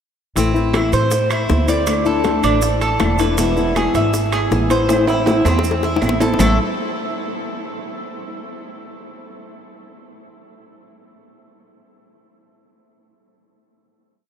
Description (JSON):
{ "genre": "latin, Cuban son and guajira", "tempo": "159 BPM", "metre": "4/4", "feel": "straight", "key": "A harmonic minor", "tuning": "A4 = 440 Hz", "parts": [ { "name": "nylon-string guitar", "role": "accompaniment", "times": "0.4-6.6 s", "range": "A2 to E4", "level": "-21 LUFS", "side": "left 4 dB", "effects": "none" }, { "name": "Cuban tres", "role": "arpeggios", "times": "0.4-6.6 s", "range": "A3 to E5", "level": "-21 LUFS", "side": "right 2 dB", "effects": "none" }, { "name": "upright bass", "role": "bass", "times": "0.4-6.6 s", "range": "E1 to A2", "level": "-21 LUFS", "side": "right 1 dB", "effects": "none" }, { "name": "bongos", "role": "percussion", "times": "0.4-6.5 s", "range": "none", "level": "-28 LUFS", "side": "left 5 dB", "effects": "none" }, { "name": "congas", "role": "percussion", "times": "0.4-6.5 s", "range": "none", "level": "-28 LUFS", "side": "left 2 dB", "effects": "none" }, { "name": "maracas", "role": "percussion", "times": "0.4-6.5 s", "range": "none", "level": "-32 LUFS", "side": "right 5 dB", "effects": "none" }, { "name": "timbales", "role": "percussion", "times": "0.4-6.5 s", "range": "none", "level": "-26 LUFS", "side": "right 6 dB", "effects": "none" }, { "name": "claves", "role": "percussion", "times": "0.7-6.5 s", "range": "none", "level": "-35 LUFS", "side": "left 2 dB", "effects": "none" } ], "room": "wet huge ambient reverb, RT60 8.9 s", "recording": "in a vast, echoing space", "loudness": "-15 LUFS", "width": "side -8 dB against mid", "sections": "0.4-6.4 A section; 6.4-7.9 final chord", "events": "drum fill 4.9-6.4", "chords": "0.4 Am; 1.9 Dsus2; 3.4 E; 4.9 Am; 6.4 A5" }